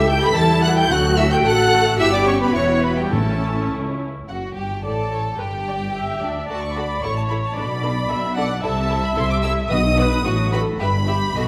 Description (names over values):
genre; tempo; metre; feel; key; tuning
quick classical-period movement for symphony orchestra; 110 BPM; 2/4; rubato; unclear; A4 = 440 Hz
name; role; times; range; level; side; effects
rich chamber violin section; melody; 0.0-11.5 s; D5 to B6; -28 LUFS; equal; none
rich chamber violin section; second line; 0.0-11.4 s; D4 to B5; -28 LUFS; equal; none
small flute group; second line; 0.0-3.7 s; G4 to B5; -27 LUFS; equal; none
rich chamber viola section; accompaniment; 0.0-11.5 s; F#3 to E5; -27 LUFS; equal; none
dark French horn section; sustained chords; 0.0-3.7 s; G3 to B4; -26 LUFS; equal; none
warm chamber cello section; bass; 0.0-11.5 s; D2 to A4; -28 LUFS; equal; none
warm symphonic double bass section; bass; 0.0-11.5 s; E1 to E2; -26 LUFS; equal; none
timpani; percussion; 0.9-4.0, 9.7-10.2 s; A2 to D3; -29 LUFS; equal; none
room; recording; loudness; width
wet scoring stage reverb, RT60 1.5 s; none; -20 LUFS; mono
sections
0.0-4.3 A section; 4.3-11.5 B section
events
none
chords
0.0 A7/C#; 0.9 D; 2.0 Em/G; 3.1 A; 4.3 N.C.; 4.8 Aadd11; 5.4 G5; 6.5 D; 7.0 A; 7.6 Bm7; 8.6 Am/C; 9.7 B; 10.3 B7/A; 10.8 Em/G (rootless)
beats
0.36 | 0.89 1.44 | 1.98 2.55 | 3.13 3.71 | 4.28 4.84 | 5.39 5.94 | 6.49 7.02 | 7.57 8.10 | 8.64 9.17 | 9.71 10.26 | 10.80 11.36